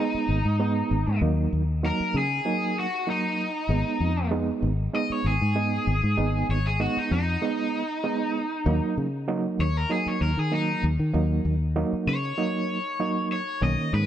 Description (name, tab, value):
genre	straight-eighth soul blues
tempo	97 BPM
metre	4/4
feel	swing 53% on 16ths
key	Eb minor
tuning	A4 = 438 Hz
part	cranked stack guitar	melody	0.0-14.1 s	Eb4 to Eb5	-29 LUFS	left 2 dB	overdrive
part	overdriven reed electric piano	accompaniment	0.0-14.0 s	D#3 to Eb4	-28 LUFS	right 4 dB	fast tremolo
part	fingered electric bass	bass	0.1-14.1 s	Ab1 to Eb3	-24 LUFS	left 1 dB	none
room	little or no reverb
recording	none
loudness	-23 LUFS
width	side -10 dB against mid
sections	0.0-14.1 A section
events	overdriven electric guitar solo 0.0-14.1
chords	0.0 Abm; 1.2 Ebm; 3.7 Abm; 8.7 Ebm